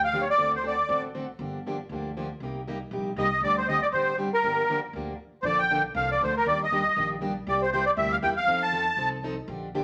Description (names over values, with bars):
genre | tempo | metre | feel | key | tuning
acoustic string swing (jazz manouche) | 237 BPM | 4/4 | swing 56% on 8ths | G minor, Bb major from 5.4 s | A4 = 441 Hz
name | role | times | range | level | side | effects
musette accordion | melody | 0.0-1.0, 3.2-9.1 s | Bb4 to A5 | -26 LUFS | equal | none
picked plugged-in steel-string acoustic guitar | accompaniment | 0.0-9.8 s | C3 to A4 | -35 LUFS | equal | none
upright bass | bass | 0.0-9.8 s | G1 to F2 | -40 LUFS | equal | none
room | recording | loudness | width
wet studio reverb, RT60 0.9 s | none | -27 LUFS | mono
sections
0.0-5.4 A section; 5.4-9.8 B section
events
stop 5.2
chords
0.4 D7; 1.4 Gm7; 2.4 Cm7; 3.4 D7sus4; 4.4 Gm7; 5.4 Bbmaj7; 6.5 Ebmaj7; 7.5 C7; 8.5 F7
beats
0.13 | 0.39 0.64 0.89 1.15 | 1.40 1.65 1.90 2.16 | 2.41 2.66 2.91 3.17 | 3.42 3.67 3.93 4.18 | 4.43 4.68 4.94 5.19 | 5.44 5.70 5.95 6.20 | 6.45 6.71 6.96 7.21 | 7.46 7.72 7.97 8.22 | 8.47 8.73 8.98 9.23 | 9.48 9.74